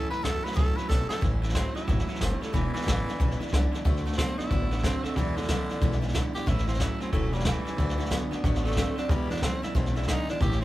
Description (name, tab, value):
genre	rockabilly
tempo	183 BPM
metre	4/4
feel	swing 62% on 8ths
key	A major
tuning	A4 = 440 Hz
part	raspy tenor saxophone	melody	0.0-10.6 s	D3 to B4	-34 LUFS	equal	none
part	picked steel-string acoustic guitar	accompaniment	0.0-10.6 s	E2 to F#4	-35 LUFS	left 3 dB	none
part	electric guitar through a small old amp	riff	0.0-10.6 s	E2 to C4	-34 LUFS	right 4 dB	none
part	upright bass	bass	0.0-10.6 s	E1 to A2	-29 LUFS	equal	none
part	jazz brush drum kit	drums	0.1-10.6 s	hi-hat, kick drum, snare drum	-28 LUFS	equal	none
room	light reverb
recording	band playing live in one room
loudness	-25 LUFS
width	side -16 dB against mid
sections	0.0-1.2 A section; 1.2-10.6 B section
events	drum fill 0.9-1.2; tenor saxophone solo 1.2-10.6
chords	0.0 A; 2.5 E7; 3.9 D; 5.2 E7; 6.5 A; 7.8 D; 9.1 E7